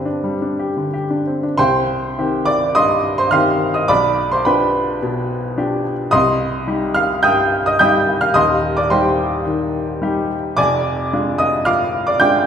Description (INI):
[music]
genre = classical, romantic character piece for solo piano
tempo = 107 BPM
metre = 4/4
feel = rubato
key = C minor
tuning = A4 = 440 Hz
[part]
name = clear upright piano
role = solo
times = 0.0-12.5 s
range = Eb1 to G6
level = -15 LUFS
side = equal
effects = none
[sound]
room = wet recital hall reverb, RT60 1.8 s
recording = heard from further back in the room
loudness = -15 LUFS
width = side -8 dB against mid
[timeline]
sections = 0.0-1.6 A section; 1.6-12.5 B section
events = none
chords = 0.0 G; 1.6 Cm; 3.9 G7/B; 6.1 Cm; 8.3 Cm/Eb; 10.6 Ddim/F